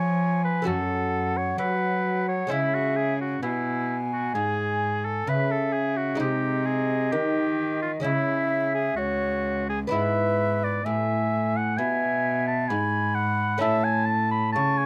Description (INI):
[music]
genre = classical, baroque-style sonata movement with continuo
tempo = 65 BPM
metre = 4/4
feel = straight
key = unclear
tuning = A4 = 440 Hz
[part]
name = warm oboe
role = melody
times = 0.0-14.9 s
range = E4 to B5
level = -30 LUFS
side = equal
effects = none
[part]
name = bright baroque flute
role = second line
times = 0.0-14.9 s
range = B4 to C#6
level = -31 LUFS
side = equal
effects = none
[part]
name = lute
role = accompaniment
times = 0.0-14.9 s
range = F#2 to G#4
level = -34 LUFS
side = equal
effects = none
[part]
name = warm cello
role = bass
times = 0.0-14.9 s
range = C#2 to F#3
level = -31 LUFS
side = equal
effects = none
[sound]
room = light reverb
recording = close, detailed microphones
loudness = -25 LUFS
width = mono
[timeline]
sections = 0.0-14.9 A section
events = none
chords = 0.0 C#/E#; 0.7 F#m; 2.5 C#m; 6.2 G#/B#; 8.0 C#m; 9.9 E/G#; 13.6 A